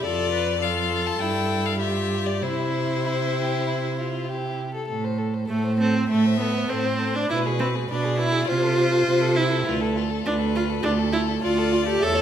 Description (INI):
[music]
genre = quick classical-period movement for string quartet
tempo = 100 BPM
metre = 4/4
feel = rubato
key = C major, A minor from 4.9 s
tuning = A4 = 439 Hz
[part]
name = clear violin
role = melody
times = 0.0-12.2 s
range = A4 to A5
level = -28 LUFS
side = left 10 dB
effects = none
[part]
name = rich violin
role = second line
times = 0.0-12.2 s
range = E4 to E5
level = -30 LUFS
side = left 4 dB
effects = none
[part]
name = clear viola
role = accompaniment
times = 0.0-12.2 s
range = A3 to B4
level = -24 LUFS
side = right 1 dB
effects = none
[part]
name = clear cello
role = bass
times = 0.0-12.2 s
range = D2 to C3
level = -26 LUFS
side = right 4 dB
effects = none
[sound]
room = wet recital hall reverb, RT60 1.4 s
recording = none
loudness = -21 LUFS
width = side -9 dB against mid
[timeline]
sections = 0.0-4.9 A section; 4.9-12.2 B section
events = none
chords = 0.0 Dm/F; 1.2 Fmaj9/G; 1.8 Dmadd11/G; 2.4 C; 4.9 Am; 7.3 E7/B; 8.5 Am/C; 9.7 Dm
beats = | 0.04 0.61 1.20 1.81 | 2.42 3.04 3.65 4.26 | 4.88 5.49 6.09 6.68 | 7.29 7.88 8.47 9.07 | 9.67 10.26 10.84 11.43 | 12.01